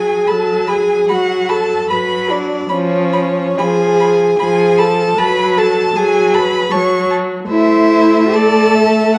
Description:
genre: classical, slow romantic movement for string quartet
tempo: 65-79 BPM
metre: 3/4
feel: rubato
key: F# minor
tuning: A4 = 438 Hz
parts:
  - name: rich violin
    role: second line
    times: 0.0-9.2 s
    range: C#5 to C#6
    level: -22 LUFS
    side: equal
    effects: none
  - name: rich viola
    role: accompaniment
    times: 0.0-9.2 s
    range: E#3 to A3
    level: -19 LUFS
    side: equal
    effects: none
  - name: rich cello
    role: bass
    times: 0.0-9.2 s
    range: C#4 to C#5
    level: -17 LUFS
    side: equal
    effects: none
  - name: rich violin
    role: melody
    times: 0.3-9.2 s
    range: C5 to B5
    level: -24 LUFS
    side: equal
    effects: none
room: wet recital hall reverb, RT60 1.7 s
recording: dark, warm production, vinyl crackle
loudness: -14 LUFS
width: mono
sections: 0.0-9.2 A section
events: none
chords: 0.3 Bm/F#; 2.7 C#/E#; 5.2 F#m; 7.5 F#m7b5/A (rootless)

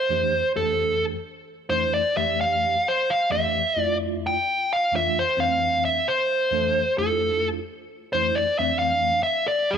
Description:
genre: jazz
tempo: 261 BPM (eighths)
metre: 7/8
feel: straight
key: F major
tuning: A4 = 440 Hz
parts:
  - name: dark smooth lead guitar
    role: melody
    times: 0.0-9.8 s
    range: A4 to G5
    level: -21 LUFS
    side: equal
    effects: overdrive
  - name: bell-like tine electric piano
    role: accompaniment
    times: 0.1-9.8 s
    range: F2 to A4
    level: -29 LUFS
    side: equal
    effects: fast stereo tremolo, lush chorus
room: moderate plate reverb, RT60 2.7 s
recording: none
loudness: -20 LUFS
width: side -7 dB against mid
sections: 0.0-9.8 A section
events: none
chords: 0.0 Fmaj7

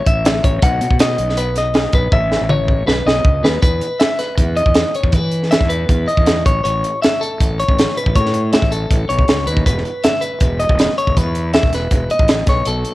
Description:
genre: math rock and midwest emo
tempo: 159 BPM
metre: 4/4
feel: straight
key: unclear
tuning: A4 = 440 Hz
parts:
  - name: clean electric guitar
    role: arpeggios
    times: 0.0-12.9 s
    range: A4 to F#5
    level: -19 LUFS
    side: left 1 dB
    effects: cassette tape, tape echo
  - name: fuzz fingered electric bass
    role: bass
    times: 0.1-12.8 s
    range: E1 to E3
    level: -20 LUFS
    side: equal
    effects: overdrive
  - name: crisp fusion drum kit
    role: drums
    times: 0.1-12.9 s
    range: hi-hat, kick drum, snare drum, toms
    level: -15 LUFS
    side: equal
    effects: none
room: studio reverb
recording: home recording on cassette, faint mains hum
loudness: -13 LUFS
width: side -17 dB against mid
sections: 0.0-3.6 A section; 3.6-12.9 B section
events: drum fill 2.1-3.6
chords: 0.0 A; 0.6 B; 2.1 A; 2.9 B; 3.6 E5; 6.5 A; 9.7 E5

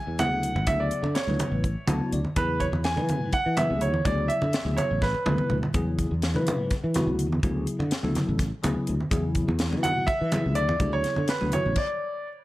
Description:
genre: electric jazz fusion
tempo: 249 BPM (eighths)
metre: 7/8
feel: straight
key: D lydian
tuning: A4 = 439 Hz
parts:
  - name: clear concert grand piano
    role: melody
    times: 0.0-5.5, 9.8-12.3 s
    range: B4 to G#5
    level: -28 LUFS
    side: right 1 dB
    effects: none
  - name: sustaining fretless electric bass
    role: bass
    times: 0.1-11.8 s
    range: A1 to E3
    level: -28 LUFS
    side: equal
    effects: lush chorus
  - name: bell-like tine electric piano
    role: accompaniment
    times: 0.2-11.8 s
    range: C#3 to A5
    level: -30 LUFS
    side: left 2 dB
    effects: phaser
  - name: crisp fusion drum kit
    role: drums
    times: 0.2-11.9 s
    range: crash cymbal, hi-hat, kick drum, snare drum, toms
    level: -30 LUFS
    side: equal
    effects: none
  - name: congas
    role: percussion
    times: 0.2-11.7 s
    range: none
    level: -31 LUFS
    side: right 1 dB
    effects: none
room: light reverb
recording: none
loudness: -23 LUFS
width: side -17 dB against mid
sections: 0.0-12.4 A section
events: tine electric piano fill 1.6-2.4; drum fill 5.0-5.8; stop 11.8-12.4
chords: 0.0 E13; 4.1 Dmaj9; 5.8 E13; 7.4 Dmaj9; 9.1 E13; 10.8 Dmaj9

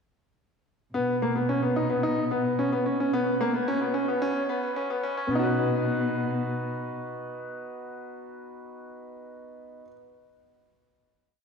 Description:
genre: piano and strings electronica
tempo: 110 BPM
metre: 4/4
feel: straight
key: B major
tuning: A4 = 440 Hz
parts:
  - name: clear grand piano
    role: riff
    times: 0.9-9.9 s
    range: A#3 to B4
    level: -27 LUFS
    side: left 1 dB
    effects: ping-pong delay
  - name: dark studio cello section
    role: bass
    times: 0.9-6.9 s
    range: B2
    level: -32 LUFS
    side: equal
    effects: none
room: wet concert hall reverb, RT60 1.9 s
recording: high-pass filter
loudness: -25 LUFS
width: side -6 dB against mid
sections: 0.9-5.3 build; 5.3-9.7 final chord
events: build-up 0.9-5.3; filter sweep 0.9-5.3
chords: 0.9 B; 3.1 Bsus2; 5.3 B

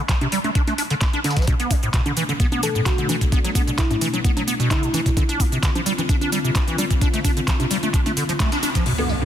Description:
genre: acid house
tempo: 130 BPM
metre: 4/4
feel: straight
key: unclear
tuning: A4 = 437 Hz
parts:
  - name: acid bass, square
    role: riff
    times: 0.1-9.2 s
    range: A2 to D4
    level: -23 LUFS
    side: equal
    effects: overdrive, wide subtle chorus, sidechain pumping, ping-pong delay
  - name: booming analog drum machine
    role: drums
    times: 0.1-9.0 s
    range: cabasa, congas, crash cymbal, handclaps, hi-hat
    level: -26 LUFS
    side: right 1 dB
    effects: none
  - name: breakbeat sampler-style drum kit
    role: drums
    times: 0.1-9.2 s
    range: hi-hat, snare drum, tambourine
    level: -36 LUFS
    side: equal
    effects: none
  - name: electronic kick drum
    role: drums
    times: 0.1-8.8 s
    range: none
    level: -20 LUFS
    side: equal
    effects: none
  - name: dark analog pad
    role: sustained chords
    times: 1.5-9.2 s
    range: B2 to F4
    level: -29 LUFS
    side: left 2 dB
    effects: chorus, sidechain pumping
  - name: thumb-piano-like synth pluck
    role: melody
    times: 2.6-5.2 s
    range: E4 to A4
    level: -28 LUFS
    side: left 2 dB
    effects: chorus, ping-pong delay
  - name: impact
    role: sound effects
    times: 8.9-9.2 s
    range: none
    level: -23 LUFS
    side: equal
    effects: none
  - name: deep mellow chord stab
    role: stabs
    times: 9.0-9.2 s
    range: D4 to B4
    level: -27 LUFS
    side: right 4 dB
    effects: chorus, phaser, ping-pong delay
room: light reverb, digital ambience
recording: dense, heavily limited modern master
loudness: -18 LUFS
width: side -10 dB against mid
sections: 0.0-8.9 A section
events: band accent 8.4; impact 8.9-9.2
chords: 0.0 Dm; 1.5 Bm7; 5.2 Dm7

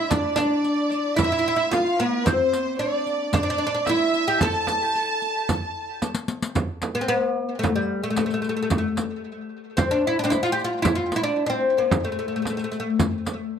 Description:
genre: Arabic maqam ensemble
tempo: 112 BPM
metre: 4/4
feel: straight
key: A maqam bayati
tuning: A4 = 440 Hz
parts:
  - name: oud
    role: melody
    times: 0.0-12.9 s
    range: G3 to A4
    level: -23 LUFS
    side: left 1 dB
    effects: tape echo
  - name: warm symphonic violin section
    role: second line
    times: 0.0-6.0 s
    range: Bb4+50c to A5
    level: -25 LUFS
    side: right 1 dB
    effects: none
  - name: frame drum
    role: percussion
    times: 0.1-13.4 s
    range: none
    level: -25 LUFS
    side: right 3 dB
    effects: none
  - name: riq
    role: percussion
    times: 0.1-13.4 s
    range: none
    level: -30 LUFS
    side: left 4 dB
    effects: none
room: wet studio reverb, RT60 0.7 s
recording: none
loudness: -21 LUFS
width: side -8 dB against mid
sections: 0.0-6.6 A section; 6.6-13.6 B section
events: drum fill 6.0-6.6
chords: none

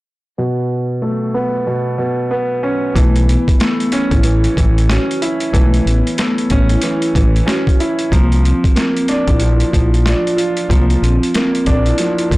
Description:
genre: hip hop, boom-bap hip-hop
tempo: 93 BPM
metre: 4/4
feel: swing 62% on 16ths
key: unclear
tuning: A4 = 441 Hz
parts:
  - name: warm grand piano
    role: accompaniment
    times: 0.4-12.4 s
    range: B2 to F4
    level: -18 LUFS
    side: right 1 dB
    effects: cassette tape, high-pass filter, low-pass filter, plate reverb
  - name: vibraphone with soft mallets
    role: melody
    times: 3.0-12.4 s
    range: A3 to F#4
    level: -20 LUFS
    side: equal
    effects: high-pass filter, low-pass filter, slapback echo, plate reverb
  - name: deep dub fingered electric bass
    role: bass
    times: 3.0-12.4 s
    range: A1 to C2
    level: -14 LUFS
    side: equal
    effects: tube saturation
  - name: boom bap sampler-style drum kit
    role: drums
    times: 3.0-12.4 s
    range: hi-hat, kick drum, snare drum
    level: -17 LUFS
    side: equal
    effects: overdrive
room: light reverb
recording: blown-out, overdriven recording, overdrive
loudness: -12 LUFS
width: side -20 dB against mid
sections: 0.4-3.0 A section; 3.0-12.4 B section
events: filter sweep on grand piano 0.4-3.0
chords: 0.4 Bsus2; 3.0 B9sus4; 8.1 C9sus4

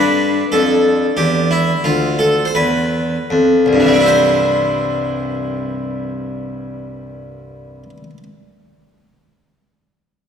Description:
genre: classical, baroque-style suite movement for harpsichord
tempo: 38-48 BPM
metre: 3/4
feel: rubato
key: C major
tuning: A4 = 440 Hz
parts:
  - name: harpsichord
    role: solo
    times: 0.0-8.2 s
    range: C2 to C5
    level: -14 LUFS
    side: equal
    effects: none
room: wet church reverb, RT60 2.6 s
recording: none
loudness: -13 LUFS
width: side -7 dB against mid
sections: 0.0-4.1 A section; 4.1-8.4 B section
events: slowing down 0.0-4.1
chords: 0.0 G7; 4.1 C

